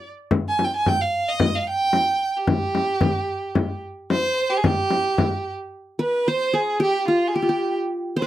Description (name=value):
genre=Arabic maqam ensemble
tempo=111 BPM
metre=4/4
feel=straight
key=G maqam hijaz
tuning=A4 = 437 Hz
part: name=clear violin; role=melody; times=0.0-8.3 s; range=F4 to Ab5+33c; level=-22 LUFS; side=right 2 dB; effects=none
part: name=frame drum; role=percussion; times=0.3-5.3 s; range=none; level=-22 LUFS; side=left 3 dB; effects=none
part: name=qanun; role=second line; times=6.0-8.3 s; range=F4 to C5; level=-22 LUFS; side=left 1 dB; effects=none
room=little or no reverb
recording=dry, close 1970s-style studio recording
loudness=-20 LUFS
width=side -13 dB against mid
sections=0.0-5.7 A section; 5.7-8.3 B section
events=none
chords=none